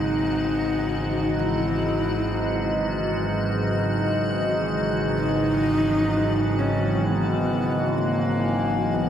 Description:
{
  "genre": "dark ambient drone",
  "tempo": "free time",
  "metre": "none",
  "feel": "none",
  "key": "unclear",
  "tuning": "A4 = 440 Hz",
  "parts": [
    { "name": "dark horsehead fiddle", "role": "melody", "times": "0.0-9.1 s", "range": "A#3 to E4", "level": "-26 LUFS", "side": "equal", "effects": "analog delay" },
    { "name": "sweeping resonant pad", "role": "sustained chords", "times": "0.0-9.1 s", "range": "G#2 to D#5", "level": "-26 LUFS", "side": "equal", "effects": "chorus, phaser" },
    { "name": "overtone-sweeping drone", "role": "drone", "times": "0.0-9.1 s", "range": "G#1 to G#2", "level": "-26 LUFS", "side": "right 1 dB", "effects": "chorus, built-in reverb" },
    { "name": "icy glass pad", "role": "texture", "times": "0.0-9.1 s", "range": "F#3 to F#4", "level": "-29 LUFS", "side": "left 2 dB", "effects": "chorus, built-in reverb" }
  ],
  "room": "wet spring reverb, RT60 2.4 s",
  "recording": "echo-heavy mix",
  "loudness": "-21 LUFS",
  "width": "side -9 dB against mid",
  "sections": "0.0-9.1 A section",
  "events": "none",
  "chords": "0.0 C#madd9/G#"
}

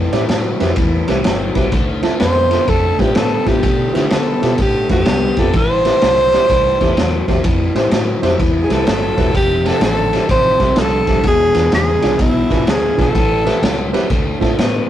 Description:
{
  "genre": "electric blues shuffle",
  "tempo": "126 BPM",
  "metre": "4/4",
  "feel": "swing 65% on 8ths",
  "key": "A minor",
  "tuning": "A4 = 439 Hz",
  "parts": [
    { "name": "biting overdriven guitar", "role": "riff", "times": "0.0-14.9 s", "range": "E2 to B3", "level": "-20 LUFS", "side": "left 3 dB", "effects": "phaser" },
    { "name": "vintage muted fingered electric bass", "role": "bass", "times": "0.0-14.8 s", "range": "E1 to D3", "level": "-21 LUFS", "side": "equal", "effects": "none" },
    { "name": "dark baby grand piano", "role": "accompaniment", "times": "0.1-14.9 s", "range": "C4 to B5", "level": "-21 LUFS", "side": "right 2 dB", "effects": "none" },
    { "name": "crunchy breakbeat drum kit", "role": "drums", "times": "0.1-14.7 s", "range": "kick drum, ride cymbal, snare drum", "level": "-18 LUFS", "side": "equal", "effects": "none" },
    { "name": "breathy tenor saxophone", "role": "melody", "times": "2.2-13.9 s", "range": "E4 to C5", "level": "-16 LUFS", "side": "right 1 dB", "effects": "none" }
  ],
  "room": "light reverb",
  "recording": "rough rehearsal-room recording, tube saturation",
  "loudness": "-12 LUFS",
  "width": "side -11 dB against mid",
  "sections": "0.0-14.9 A section",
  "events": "grand piano fill 1.0-1.7",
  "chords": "0.0 Am9; 1.7 Dm9; 5.5 Am7; 9.3 Fmaj7; 11.2 E7b9; 13.1 Am9; 14.1 D5"
}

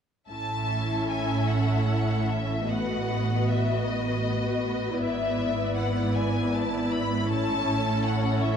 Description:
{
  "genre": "classical, slow romantic movement for string orchestra",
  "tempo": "52 BPM (dotted quarters)",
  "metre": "6/8",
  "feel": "rubato",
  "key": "A major",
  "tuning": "A4 = 440 Hz",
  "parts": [
    { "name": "rich studio violin section", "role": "melody", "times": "0.3-8.6 s", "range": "D#5 to B5", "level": "-32 LUFS", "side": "left 4 dB", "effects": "none" },
    { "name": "rich studio violin section", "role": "second line", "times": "0.3-8.6 s", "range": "A4 to E5", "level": "-33 LUFS", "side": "left 3 dB", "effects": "none" },
    { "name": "rich studio viola section", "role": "accompaniment", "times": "0.3-8.6 s", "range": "B3 to F#4", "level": "-29 LUFS", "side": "left 1 dB", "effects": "none" },
    { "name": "rich studio cello section", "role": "bass", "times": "0.3-8.6 s", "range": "G#2 to A2", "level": "-30 LUFS", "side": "right 3 dB", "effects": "none" },
    { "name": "rich studio double bass section", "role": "bass", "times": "0.3-8.6 s", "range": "G#1 to A1", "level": "-30 LUFS", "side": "right 3 dB", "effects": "none" }
  ],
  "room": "moderate scoring stage reverb, RT60 2.1 s",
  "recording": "dark, warm production",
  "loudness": "-24 LUFS",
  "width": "side -7 dB against mid",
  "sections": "0.3-8.6 A section",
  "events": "none",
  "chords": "0.3 A; 2.7 B7/A; 5.0 E7/G#; 7.3 A"
}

